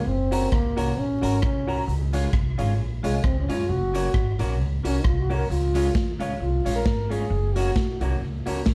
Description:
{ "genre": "ska", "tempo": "133 BPM", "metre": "4/4", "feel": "swing 56% on 8ths", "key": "unclear", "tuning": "A4 = 441 Hz", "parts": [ { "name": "breathy trombone", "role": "melody", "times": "0.0-8.0 s", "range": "Ab3 to Bb4", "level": "-30 LUFS", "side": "equal", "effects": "slapback echo" }, { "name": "upright bass", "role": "bass", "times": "0.0-8.7 s", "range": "Gb1 to Gb2", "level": "-28 LUFS", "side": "equal", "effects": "none" }, { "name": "semi-hollow electric guitar", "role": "accompaniment", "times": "0.3-8.6 s", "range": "Ab3 to Bb4", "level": "-34 LUFS", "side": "equal", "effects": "vibrato effect, slapback echo" }, { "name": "warm upright piano", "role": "stabs", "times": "0.3-8.6 s", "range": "F4 to Db5", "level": "-36 LUFS", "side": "equal", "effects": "slapback echo" }, { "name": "raw garage drum kit", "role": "drums", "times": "0.3-8.7 s", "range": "hi-hat, kick drum, rim click, snare drum", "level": "-29 LUFS", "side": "equal", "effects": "none" } ], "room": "light reverb", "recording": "dark, warm production, vinyl crackle", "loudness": "-24 LUFS", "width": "mono", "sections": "0.0-8.7 A section", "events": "trombone solo 0.0-8.7", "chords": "0.1 Gb; 1.9 Db; 3.7 Gb; 5.5 Db; 7.3 Gb", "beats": "| 0.07 0.52 0.97 1.43 | 1.88 2.33 2.79 3.24 | 3.69 4.14 4.59 5.05 | 5.50 5.95 6.40 6.86 | 7.31 7.76 8.21 8.66" }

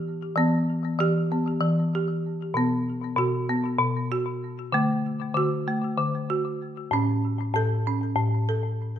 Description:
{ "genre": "world meditative, meditative tuned percussion", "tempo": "192 BPM (eighths)", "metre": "7/8", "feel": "straight", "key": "E dorian", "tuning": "A4 = 440 Hz", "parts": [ { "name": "folk marimba with medium hard mallets", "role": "solo", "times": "0.0-9.0 s", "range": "A2 to A4", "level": "-23 LUFS", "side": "equal", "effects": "ping-pong delay" } ], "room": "wet recital hall reverb, RT60 1.3 s, studio reverb", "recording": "none", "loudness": "-23 LUFS", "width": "side -10 dB against mid", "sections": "0.4-9.0 A section", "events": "none", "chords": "0.4 Em; 2.6 B5; 4.7 D; 6.9 A", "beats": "0.07 | 0.38 0.69 1.00 1.31 1.63 1.94 2.25 | 2.56 2.87 3.18 3.50 3.81 4.12 4.43 | 4.74 5.05 5.37 5.68 5.99 6.30 6.61 | 6.93 7.24 7.55 7.86 8.17 8.48 8.80" }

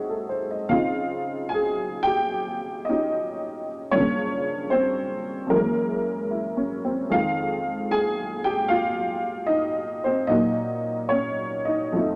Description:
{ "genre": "solo jazz", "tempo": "75 BPM", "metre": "4/4", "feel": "swing 69% on 8ths, rubato", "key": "unclear", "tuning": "A4 = 443 Hz", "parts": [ { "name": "honky-tonk upright piano", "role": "solo", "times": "0.0-12.2 s", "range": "F2 to Ab5", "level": "-25 LUFS", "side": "equal", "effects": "none" } ], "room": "moderate club ambience, RT60 0.5 s", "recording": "none", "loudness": "-25 LUFS", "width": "mono", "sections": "0.0-12.2 A section", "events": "none", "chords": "0.0 Ab7b9; 0.7 Dbmaj9; 3.9 Gm7b5; 5.5 Gb9; 7.1 Fm9; 10.3 Gb6/Bb", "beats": "| 0.71 1.53 2.34 3.15 | 3.94 4.74 5.53 6.32 | 7.11 7.91 8.70 9.49 | 10.30 11.11 11.95" }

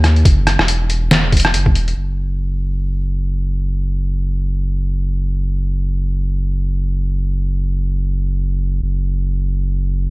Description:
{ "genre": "deep dubstep", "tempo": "free time", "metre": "none", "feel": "none", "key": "unclear", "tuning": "A4 = 440 Hz", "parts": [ { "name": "saturated sub bass", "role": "bass", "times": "0.0-10.1 s", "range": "E1 to D#2", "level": "-17 LUFS", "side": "equal", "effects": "tube saturation" }, { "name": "trip hop sampler-style drum kit", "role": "drums", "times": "0.0-1.9 s", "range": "hi-hat, rim click, snare drum", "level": "-16 LUFS", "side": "equal", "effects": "small room reverb" }, { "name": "electronic kick drum", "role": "drums", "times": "0.3-1.7 s", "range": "none", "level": "-14 LUFS", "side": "equal", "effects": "small room reverb" } ], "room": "little or no reverb", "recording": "none", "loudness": "-15 LUFS", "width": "side -23 dB against mid", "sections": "0.0-2.0 A section; 2.0-10.1 B section", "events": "none", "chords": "none", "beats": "free time" }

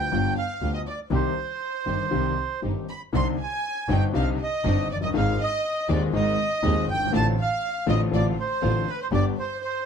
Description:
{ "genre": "tango", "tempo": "120 BPM", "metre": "4/4", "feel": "rubato", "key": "C harmonic minor", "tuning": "A4 = 440 Hz", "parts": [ { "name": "bandoneon", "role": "melody", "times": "0.0-9.9 s", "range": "B4 to C6", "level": "-28 LUFS", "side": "right 3 dB", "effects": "plate reverb" }, { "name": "warm studio violin section", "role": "second line", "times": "0.0-9.9 s", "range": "B4 to C6", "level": "-32 LUFS", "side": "equal", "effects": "none" }, { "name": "warm grand piano", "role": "accompaniment", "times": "0.0-9.3 s", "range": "Eb1 to Ab4", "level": "-26 LUFS", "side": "left 4 dB", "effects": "none" }, { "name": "warm studio string section", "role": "stabs", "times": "0.0-9.3 s", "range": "Ab3 to G4", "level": "-33 LUFS", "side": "right 3 dB", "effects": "none" }, { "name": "warm double bass", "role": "bass", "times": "0.0-9.3 s", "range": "F#1 to Eb2", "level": "-27 LUFS", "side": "right 2 dB", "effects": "none" } ], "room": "light reverb", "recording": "dark, warm production", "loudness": "-22 LUFS", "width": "side -7 dB against mid", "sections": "0.0-3.1 A section; 3.1-9.9 A section", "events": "none", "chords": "0.0 G7; 1.1 Cm; 3.1 Cmadd9; 5.1 Ab; 7.1 F6/A; 9.1 G", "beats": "0.11 0.61 | 1.11 1.61 2.12 2.63 | 3.14 3.64 4.15 4.65 | 5.14 5.64 6.14 6.63 | 7.13 7.62 8.12 8.62 | 9.12 9.62" }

